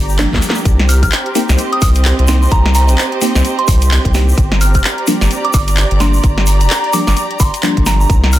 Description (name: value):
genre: UK garage, two-step garage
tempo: 129 BPM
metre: 4/4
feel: swing 60% on 16ths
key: unclear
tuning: A4 = 439 Hz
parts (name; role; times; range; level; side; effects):
- saturated sub bass; bass; 0.0-8.4 s; F1 to D2; -12 LUFS; equal; none
- warm studio string section; texture; 0.0-8.4 s; C4 to Bb5; -21 LUFS; right 2 dB; sidechain pumping
- tube shaker; percussion; 0.1-8.4 s; none; -25 LUFS; left 4 dB; none
- deep mellow chord stab; stabs; 0.2-8.1 s; F3 to G4; -20 LUFS; equal; analog chorus, cassette tape, dub echo
- garage drum kit; drums; 0.2-8.4 s; handclaps, hi-hat, snare drum; -18 LUFS; equal; none
- electronic kick drum; drums; 0.3-8.2 s; none; -14 LUFS; equal; none
- soft synth bell; melody; 0.9-8.4 s; Bb5 to F6; -21 LUFS; right 2 dB; chorus, phaser, dub echo
room: light reverb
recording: dense, heavily limited modern master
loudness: -10 LUFS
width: side -14 dB against mid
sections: 0.0-8.4 A section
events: drum fill 0.2-0.7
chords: 0.0 Gm7; 0.7 Cm7; 4.4 Gm7